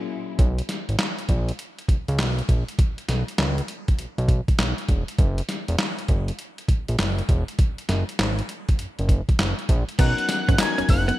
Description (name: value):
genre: R&B, new jack swing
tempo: 100 BPM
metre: 4/4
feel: swing 65% on 16ths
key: unclear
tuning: A4 = 442 Hz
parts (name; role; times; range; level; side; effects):
- FM electric piano; accompaniment; 0.0-0.4, 10.0-11.2 s; F#3 to A#4; -30 LUFS; left 8 dB; chorus
- fat analog bass; bass; 0.4-11.1 s; E1 to C#2; -24 LUFS; equal; none
- boom bap sampler-style drum kit; drums; 0.4-11.2 s; crash cymbal, handclaps, hi-hat, kick drum, snare drum, tambourine; -22 LUFS; equal; gated reverb
- fat analog lead; melody; 10.0-11.2 s; F#6 to G#6; -25 LUFS; equal; ping-pong delay
- direct-recorded clean electric guitar; riff; 10.0-11.1 s; B3 to C#4; -29 LUFS; right 6 dB; wide subtle chorus
room: digital ambience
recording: bright 1980s-style digital production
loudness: -21 LUFS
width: side -16 dB against mid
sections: 0.4-10.0 A section; 10.0-11.2 B section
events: band accent 0.0-0.4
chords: 0.4 Bsus2; 5.2 F#; 10.0 Bmaj9